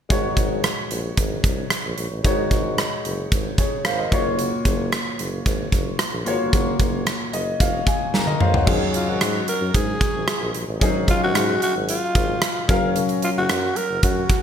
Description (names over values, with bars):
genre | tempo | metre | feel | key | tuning
1980s-style pop | 112 BPM | 4/4 | straight | unclear | A4 = 441 Hz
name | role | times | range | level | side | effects
warm concert grand piano | accompaniment | 0.1-14.4 s | Gb3 to Bb5 | -25 LUFS | left 2 dB | lush chorus
warm tuba | bass | 0.1-14.2 s | F1 to Ab2 | -28 LUFS | equal | none
big rock drum kit | drums | 0.1-14.4 s | crash cymbal, hi-hat, kick drum, rim click, snare drum, toms | -22 LUFS | equal | gated reverb
raspy alto saxophone | melody | 9.0-14.4 s | F4 to Bb4 | -24 LUFS | equal | none
room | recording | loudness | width
moderate plate reverb, RT60 1.2 s, studio ambience | bright 1980s-style digital production | -19 LUFS | side -8 dB against mid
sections
0.1-8.7 A section; 8.7-14.4 B section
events
grand piano fill 7.1-8.7; drum fill 8.1-8.7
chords
0.1 Ab7sus4; 4.1 Gbmaj7; 8.7 Ab7sus4; 12.7 Gbmaj7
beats
| 0.10 0.64 1.17 1.71 | 2.25 2.78 3.32 3.85 | 4.39 4.92 5.46 6.00 | 6.53 7.07 7.60 8.14 | 8.67 9.21 9.74 10.28 | 10.82 11.35 11.89 12.42 | 12.96 13.49 14.03